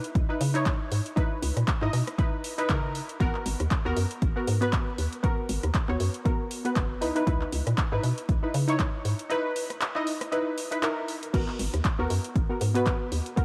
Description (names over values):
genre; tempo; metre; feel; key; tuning
deep house; 118 BPM; 4/4; swing 56% on 16ths; unclear; A4 = 440 Hz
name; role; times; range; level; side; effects
deep house drum kit; drums; 0.0-13.4 s; crash cymbal, handclaps, hi-hat, rim click; -37 LUFS; equal; overdrive
hollow knocking FM bass; bass; 0.2-13.2 s; F#1 to C#3; -30 LUFS; equal; tube saturation, sidechain pumping
electronic kick drum; drums; 0.2-13.4 s; none; -29 LUFS; equal; none
filtered dub chord stab; stabs; 0.3-13.4 s; B3 to D#5; -32 LUFS; equal; chorus, cassette tape, sidechain pumping, analog delay
room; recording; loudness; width
moderate cathedral reverb, RT60 4.2 s; dreamy mix soaked in reverb, vinyl crackle; -27 LUFS; mono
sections
0.0-13.4 A section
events
none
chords
0.0 C#m9; 3.2 G#m9; 7.0 C#m9; 11.3 G#m9